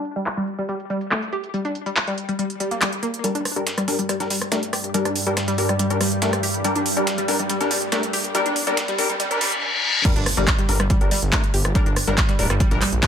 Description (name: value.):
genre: driving peak-time techno.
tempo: 141 BPM.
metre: 4/4.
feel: straight.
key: G minor.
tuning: A4 = 439 Hz.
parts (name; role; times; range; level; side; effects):
analog pluck; riff; 0.0-13.1 s; G3 to G4; -26 LUFS; left 1 dB; chorus, overdrive, sidechain pumping, ping-pong delay.
techno drum kit; drums; 0.0-13.1 s; crash cymbal, handclaps, hi-hat, rim click; -24 LUFS; right 1 dB; none.
swell, riser, reverse cymbal and impact; sound effects; 2.5-11.8 s; none; -28 LUFS; left 1 dB; none.
rave stab; stabs; 3.2-13.1 s; G3 to Bb4; -26 LUFS; left 3 dB; chorus, built-in reverb, sidechain pumping, digital delay.
deep dark ambient pad; drone; 4.1-13.1 s; G2 to G3; -29 LUFS; right 1 dB; chorus, built-in reverb, sidechain pumping.
dusty soul sampler-style drum kit; drums; 3.2-13.1 s; hi-hat, snare drum; -32 LUFS; left 1 dB; high-pass filter on snare, sidechain pumping on hats, high-pass filter on hats.
electronic kick drum; drums; 10.0-13.1 s; none; -20 LUFS; equal; none.
detuned saw bass; bass; 10.2-13.0 s; D1 to Bb1; -24 LUFS; equal; tube saturation, sidechain pumping.
room: moderate stone room reverb, RT60 0.9 s, digital ambience.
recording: high-pass filter, low-pass filter.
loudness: -19 LUFS.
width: side -8 dB against mid.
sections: 0.0-3.2 A section; 3.2-10.0 B section; 10.0-13.1 C section.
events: filter sweep on synth arpeggio sound 0.0-3.2, 3.2-10.0; filter sweep 0.0-3.2; swell 2.5-3.2; build-up 3.2-10.0; filter sweep on synth stab 3.2-10.0; reverse cymbal 9.2-10.0; drop 10.0-13.1; impact 10.0-11.8.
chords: 0.0 N.C.; 3.2 Gm.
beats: 0.26 0.69 1.11 | 1.54 1.96 2.39 2.81 | 3.24 3.67 4.09 4.52 | 4.94 5.37 5.79 6.22 | 6.64 7.07 7.50 7.92 | 8.35 8.77 9.20 9.62 | 10.05 10.47 10.90 11.33 | 11.75 12.18 12.60 13.03.